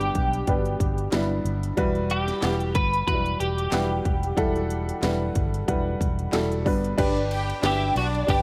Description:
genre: piano-driven pop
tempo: 92 BPM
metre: 4/4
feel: swing 56% on 16ths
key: G major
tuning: A4 = 440 Hz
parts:
  - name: twelve-string electric guitar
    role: melody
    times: 0.0-8.4 s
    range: F#4 to B4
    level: -30 LUFS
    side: equal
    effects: ensemble chorus
  - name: dark upright piano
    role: accompaniment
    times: 0.0-8.4 s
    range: G2 to F#5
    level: -29 LUFS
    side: equal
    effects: none
  - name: vintage muted fingered electric bass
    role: bass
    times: 0.0-8.4 s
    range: E1 to B1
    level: -30 LUFS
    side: equal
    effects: none
  - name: house drum kit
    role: drums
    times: 0.0-8.4 s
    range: crash cymbal, handclaps, hi-hat, kick drum, ride cymbal, snare drum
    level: -30 LUFS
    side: equal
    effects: none
  - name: warm symphonic violin section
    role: second line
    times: 7.0-8.4 s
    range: D4 to G5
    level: -33 LUFS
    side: equal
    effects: none
room: little or no reverb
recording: none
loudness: -25 LUFS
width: mono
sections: 0.0-7.0 A section; 7.0-8.4 B section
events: none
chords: 0.0 G; 1.8 Emadd9; 6.7 G

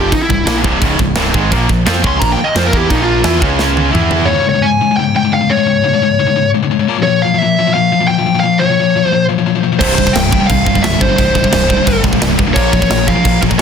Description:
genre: heavy metal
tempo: 174 BPM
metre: 4/4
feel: straight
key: unclear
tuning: A4 = 440 Hz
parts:
  - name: high-gain lead guitar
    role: melody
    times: 0.0-13.6 s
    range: Eb4 to C6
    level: -15 LUFS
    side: equal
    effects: distortion, digital delay
  - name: distorted electric guitar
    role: riff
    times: 0.0-4.3, 9.8-13.6 s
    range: C2 to Bb4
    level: -22 LUFS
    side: equal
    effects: overdrive
  - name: high-gain distorted guitar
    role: riff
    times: 0.0-4.3, 9.8-13.6 s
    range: C2 to F4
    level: -18 LUFS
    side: right 13 dB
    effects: distortion
  - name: tight distorted guitar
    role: riff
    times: 0.0-13.6 s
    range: C2 to F4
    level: -15 LUFS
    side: left 10 dB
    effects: distortion
  - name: growling picked electric bass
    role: bass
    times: 0.0-4.3, 9.8-13.6 s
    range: C1 to F2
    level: -18 LUFS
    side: right 1 dB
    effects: overdrive
  - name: tight metal drum kit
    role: drums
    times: 0.1-4.2, 9.8-13.6 s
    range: china cymbal, crash cymbal, kick drum, snare drum, toms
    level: -16 LUFS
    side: right 1 dB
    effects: none
room: light reverb, small room reverb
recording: dense, heavily limited modern master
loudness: -10 LUFS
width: side -7 dB against mid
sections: 0.0-4.3 A section; 4.3-13.6 B section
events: lead electric guitar solo 0.0-4.3; drum fill 3.6-4.3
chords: 0.0 C; 1.5 Bb5; 3.4 Db5; 3.9 E5; 4.3 Db5; 6.9 Bbm; 9.8 C; 12.6 Bbm

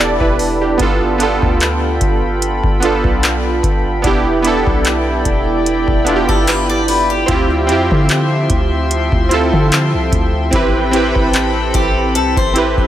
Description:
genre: contemporary R&B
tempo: 74 BPM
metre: 4/4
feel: swing 54% on 16ths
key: unclear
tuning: A4 = 440 Hz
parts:
  - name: warm analog keys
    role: accompaniment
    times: 0.0-12.9 s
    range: B3 to D5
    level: -16 LUFS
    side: right 2 dB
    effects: chorus
  - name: chorused pulse-width pad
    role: sustained chords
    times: 0.0-12.9 s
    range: F3 to C6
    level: -20 LUFS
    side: equal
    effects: none
  - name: soft 808-style bass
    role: bass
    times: 0.0-12.9 s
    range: E1 to D3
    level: -19 LUFS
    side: equal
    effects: none
  - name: booming analog drum machine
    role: drums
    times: 0.0-12.9 s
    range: handclaps, hi-hat, kick drum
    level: -17 LUFS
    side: equal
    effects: overdrive
  - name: picked swing-style acoustic guitar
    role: arpeggios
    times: 6.3-12.9 s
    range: G4 to D5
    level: -18 LUFS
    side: left 2 dB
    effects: digital delay
room: little or no reverb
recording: none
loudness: -12 LUFS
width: side -12 dB against mid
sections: 0.0-12.9 A section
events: none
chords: 0.0 G69/E; 0.8 G9; 4.0 Em7; 7.3 Dm11; 10.5 Am9

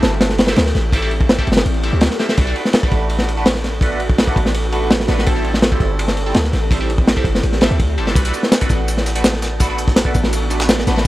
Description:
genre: drum and bass, jungle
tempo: 166 BPM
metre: 4/4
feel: straight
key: B phrygian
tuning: A4 = 440 Hz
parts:
  - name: ethereal airy pad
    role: sustained chords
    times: 0.0-11.1 s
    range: B3 to A4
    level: -25 LUFS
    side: right 1 dB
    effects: ensemble chorus, built-in reverb, phaser, vintage 12-bit sampler grit
  - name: band-passed chord stab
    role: stabs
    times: 0.0-11.0 s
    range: G3 to B4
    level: -24 LUFS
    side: right 1 dB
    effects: phaser, dub echo
  - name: warm 808-style bass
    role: bass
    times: 0.0-11.1 s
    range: G1 to D2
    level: -19 LUFS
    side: equal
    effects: none
  - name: crunchy breakbeat drum kit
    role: drums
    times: 0.0-11.1 s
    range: kick drum, ride cymbal, snare drum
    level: -16 LUFS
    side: equal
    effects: none
  - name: breakbeat sampler-style drum kit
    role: drums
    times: 8.2-11.0 s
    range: hi-hat, snare drum, tambourine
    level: -25 LUFS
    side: equal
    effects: high-pass filter on snare, high-pass filter on perc, high-pass filter on hats
  - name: wind-like tuned noise texture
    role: texture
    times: 9.0-11.1 s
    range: A4 to A5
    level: -34 LUFS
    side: left 1 dB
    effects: none
room: little or no reverb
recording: dry, gritty hardware recording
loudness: -14 LUFS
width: side -16 dB against mid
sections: 0.0-11.1 A section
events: none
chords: 0.0 Am7; 2.4 Bm7; 5.3 Am7; 8.2 Bm7

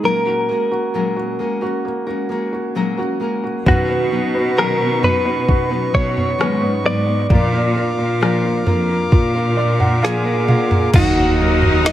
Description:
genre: pop ballad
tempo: 66 BPM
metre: 4/4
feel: straight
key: unclear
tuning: A4 = 443 Hz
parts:
  - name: direct-recorded clean electric guitar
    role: melody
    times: 0.0-11.9 s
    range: F#4 to Eb5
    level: -20 LUFS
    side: equal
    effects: none
  - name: felt-muted upright piano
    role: accompaniment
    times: 0.0-11.9 s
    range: Eb3 to Gb5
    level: -23 LUFS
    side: right 2 dB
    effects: none
  - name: nylon-string guitar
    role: arpeggios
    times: 0.0-11.9 s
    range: Bb2 to B4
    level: -24 LUFS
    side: left 3 dB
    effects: none
  - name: pipe organ, foundations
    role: sustained chords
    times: 3.7-11.9 s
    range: B3 to Eb6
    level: -25 LUFS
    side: equal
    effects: none
  - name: bright studio cello section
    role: bass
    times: 3.7-11.9 s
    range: Eb2 to B2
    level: -20 LUFS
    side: equal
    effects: none
  - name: smooth R&B drum kit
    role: drums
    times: 3.7-11.9 s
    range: crash cymbal, kick drum, rim click, snare drum, toms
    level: -17 LUFS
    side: equal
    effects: none
  - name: rich studio cello section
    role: second line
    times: 10.9-11.9 s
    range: Eb4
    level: -22 LUFS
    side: left 3 dB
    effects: none
  - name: impact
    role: sound effects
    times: 11.0-11.9 s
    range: none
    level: -24 LUFS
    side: equal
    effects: none
room: light reverb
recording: none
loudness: -15 LUFS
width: side -12 dB against mid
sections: 0.0-10.9 A section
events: felt piano fill 9.1-10.9; drum fill 10.0-10.9; impact 10.9-11.9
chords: 0.0 Gbadd9/Bb; 3.7 Badd9; 7.3 Bb; 10.9 Ebm

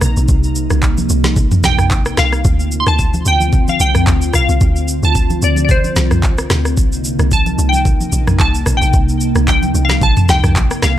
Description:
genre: amapiano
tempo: 111 BPM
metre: 4/4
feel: swing 55% on 16ths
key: unclear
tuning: A4 = 438 Hz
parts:
  - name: glassy FM pad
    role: sustained chords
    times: 0.0-11.0 s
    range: C3 to F4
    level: -20 LUFS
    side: equal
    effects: ensemble chorus, built-in reverb
  - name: deep log drum bass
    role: bass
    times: 0.0-11.0 s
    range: Bb1 to D2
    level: -16 LUFS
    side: equal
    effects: none
  - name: afro-pop drum kit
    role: drums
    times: 0.0-11.0 s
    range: handclaps, kick drum, rim click, shaker, snare drum, toms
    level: -15 LUFS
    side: equal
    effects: none
  - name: congas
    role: percussion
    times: 0.0-11.0 s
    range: none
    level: -23 LUFS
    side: right 1 dB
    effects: none
  - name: glassy wavetable pluck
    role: melody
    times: 1.7-11.0 s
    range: C5 to C6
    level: -18 LUFS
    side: left 1 dB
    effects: chorus, tape echo
room: little or no reverb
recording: dry, gritty hardware recording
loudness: -11 LUFS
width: side -12 dB against mid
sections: 0.0-11.0 A section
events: none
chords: 0.0 Cm7; 2.4 Dm7; 6.8 Cm7

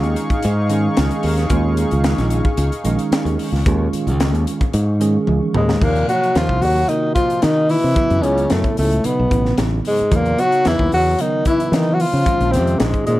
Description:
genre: electric jazz fusion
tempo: 112 BPM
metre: 4/4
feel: straight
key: unclear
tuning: A4 = 440 Hz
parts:
  - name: bell-like tine electric piano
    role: accompaniment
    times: 0.0-13.2 s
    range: C3 to Ab4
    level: -24 LUFS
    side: right 4 dB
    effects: analog chorus
  - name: brassy analog pad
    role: sustained chords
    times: 0.0-5.8 s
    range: Eb4 to Db6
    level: -26 LUFS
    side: left 1 dB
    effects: chorus, tremolo
  - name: modern bright fingered electric bass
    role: bass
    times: 0.0-13.2 s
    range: A1 to E3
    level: -18 LUFS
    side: equal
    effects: none
  - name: crisp fusion drum kit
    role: drums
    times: 0.0-13.2 s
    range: crash cymbal, hi-hat, kick drum, snare drum, toms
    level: -22 LUFS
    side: equal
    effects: none
  - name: breathy tenor saxophone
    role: melody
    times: 5.6-13.2 s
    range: Ab3 to Gb4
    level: -18 LUFS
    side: equal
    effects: none
  - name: breathy tenor saxophone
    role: second line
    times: 5.6-13.2 s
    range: Ab2 to F#3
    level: -23 LUFS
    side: left 4 dB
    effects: none
room: small room ambience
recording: none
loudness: -15 LUFS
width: side -16 dB against mid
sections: 0.0-5.8 A section; 5.8-13.2 B section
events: drum fill 5.3-5.8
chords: 0.0 Eb9sus4; 5.8 Ebm69; 8.0 Gb5; 9.0 B7; 10.1 Esus2; 12.3 Bbm7

